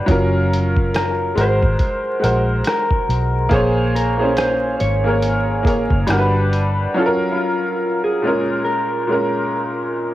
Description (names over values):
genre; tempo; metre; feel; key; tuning
lo-fi hip hop; 70 BPM; 4/4; swing 59% on 16ths; Bb minor; A4 = 441 Hz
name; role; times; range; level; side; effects
bright upright piano; accompaniment; 0.0-10.1 s; Bb2 to Db5; -19 LUFS; equal; low-pass filter, cassette tape
vintage muted fingered electric bass; bass; 0.1-6.9 s; Gb1 to Cb2; -20 LUFS; equal; none
lo-fi sampler-style drum kit; drums; 0.1-6.8 s; hi-hat, kick drum, rim click; -21 LUFS; equal; vintage 12-bit sampler grit, cassette tape
mellow electric guitar; melody; 0.9-9.9 s; E4 to Db5; -23 LUFS; equal; spring reverb, low-pass filter, cassette tape, tape echo
room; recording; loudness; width
light reverb; home recording on cassette, vinyl crackle; -16 LUFS; side -14 dB against mid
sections
0.0-10.1 A section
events
break 6.9-10.1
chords
0.1 Gbmaj7; 1.4 Ab9; 3.5 Bbm9; 6.1 Gmaj7; 6.9 Gbmaj7; 8.2 Bbm7